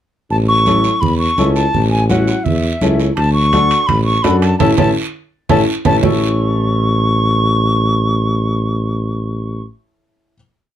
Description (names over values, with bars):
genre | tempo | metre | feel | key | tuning
latin, cumbia | 168 BPM | 4/4 | straight | A major | A4 = 440 Hz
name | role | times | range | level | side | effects
silver concert flute | melody | 0.3-9.6 s | E5 to C#6 | -17 LUFS | equal | none
mellow tuba | bass | 0.3-9.6 s | A1 to F#2 | -16 LUFS | equal | none
congas | percussion | 0.3-6.1 s | none | -20 LUFS | right 4 dB | none
guiro | percussion | 0.3-6.1 s | none | -29 LUFS | right 6 dB | none
clear upright piano | accompaniment | 0.7-10.3 s | C#4 to A4 | -18 LUFS | left 2 dB | none
timbales | percussion | 3.2-6.1 s | none | -22 LUFS | right 8 dB | none
room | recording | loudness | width
moderate studio ambience, RT60 0.5 s | dark, warm production | -12 LUFS | side -11 dB against mid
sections
0.3-6.0 A section; 6.0-8.9 final chord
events
drum fill 4.6-6.0; band accent 4.6-6.0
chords
0.3 A; 3.2 D; 4.6 A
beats
| 0.30 0.66 1.02 1.38 | 1.74 2.10 2.46 2.81 | 3.17 3.53 3.89 4.25 | 4.60 4.96 5.32 5.67 | 6.03 6.38 6.74 7.09 | 7.45 7.80 8.16 8.52